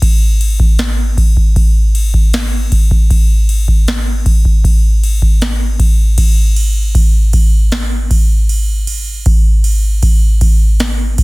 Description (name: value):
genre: metal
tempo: 156 BPM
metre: 4/4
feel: straight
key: none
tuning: none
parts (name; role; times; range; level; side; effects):
- booming analog drum machine; drums; 0.0-11.2 s; crash cymbal, kick drum, snare drum; -10 LUFS; equal; none
room: little or no reverb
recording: dense, heavily limited modern master, faint mains hum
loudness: -10 LUFS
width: side -24 dB against mid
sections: 0.0-6.2 A section; 6.2-11.2 B section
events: kick and snare drop out 6.0; half time 6.2-11.2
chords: none